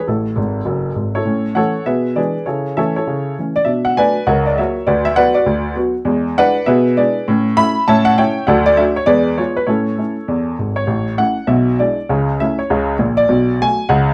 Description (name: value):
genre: jazz, stride piano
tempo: 200 BPM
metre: 4/4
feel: swing 62% on 8ths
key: A major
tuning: A4 = 439 Hz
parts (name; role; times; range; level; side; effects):
- warm upright piano; solo; 0.0-14.1 s; F#1 to B5; -16 LUFS; equal; none
room: light reverb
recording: close, detailed microphones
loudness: -16 LUFS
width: mono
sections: 0.0-1.3 A section; 1.3-10.9 A section; 10.9-14.1 A section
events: upright piano fill 0.4-1.3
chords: 0.1 A5; 1.3 A; 1.9 E7/B; 2.5 A/C#; 3.7 Bm7; 4.3 F#7/C#; 4.9 Bm/D; 6.1 E7; 6.7 E7/B; 7.3 A; 8.5 D; 9.1 E7b9; 9.7 A; 11.5 E7/B; 12.1 A/C#; 13.3 Bm7